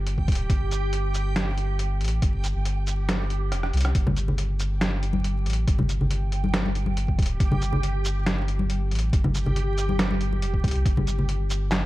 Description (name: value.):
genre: deep dubstep.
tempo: 139 BPM.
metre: 4/4.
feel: half-time.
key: unclear.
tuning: A4 = 439 Hz.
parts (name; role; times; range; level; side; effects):
soft dub sub bass; bass; 0.0-11.9 s; D1 to C2; -25 LUFS; equal; none.
backwards swelling texture; texture; 0.0-11.9 s; G4; -34 LUFS; right 2 dB; built-in reverb.
trip hop sampler-style drum kit; drums; 0.1-11.8 s; handclaps, hi-hat, rim click, shaker, snare drum; -29 LUFS; right 1 dB; none.
electronic kick drum; drums; 0.2-10.9 s; none; -23 LUFS; equal; none.
congas; percussion; 4.1-11.3 s; none; -28 LUFS; left 1 dB; none.
room: little or no reverb.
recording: dark, warm production, vinyl crackle.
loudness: -22 LUFS.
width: side -17 dB against mid.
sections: 0.0-11.9 A section.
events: kick drops out 3.1-3.9; drum fill 3.5-3.9.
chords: 0.0 G5.